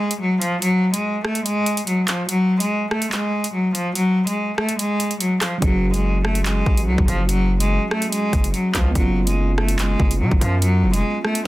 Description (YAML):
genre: hip hop, drill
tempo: 144 BPM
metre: 4/4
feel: half-time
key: F# harmonic minor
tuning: A4 = 439 Hz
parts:
  - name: rich cello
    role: melody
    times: 0.0-11.4 s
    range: E#3 to A3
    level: -20 LUFS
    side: equal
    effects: none
  - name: drill drum kit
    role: drums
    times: 0.1-11.4 s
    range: handclaps, hi-hat, kick drum, rim click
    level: -22 LUFS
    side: equal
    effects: none
  - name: mellow tine electric piano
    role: accompaniment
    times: 5.6-11.5 s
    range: F#3 to G#4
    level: -27 LUFS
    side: right 3 dB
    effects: none
  - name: distorted 808-style bass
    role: bass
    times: 5.6-11.0 s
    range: E#1 to C#3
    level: -20 LUFS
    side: equal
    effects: distortion
room: light reverb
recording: dense, heavily limited modern master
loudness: -17 LUFS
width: side -17 dB against mid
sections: 0.0-11.5 A section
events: break 0.0-5.6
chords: 0.0 N.C.; 5.6 F#sus2; 9.0 C#7/F#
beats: 0.20 | 0.62 1.04 1.45 1.87 | 2.29 2.70 3.12 3.54 | 3.95 4.37 4.79 5.20 | 5.62 6.04 6.45 6.87 | 7.29 7.70 8.12 8.54 | 8.95 9.37 9.79 10.20 | 10.62 11.04 11.45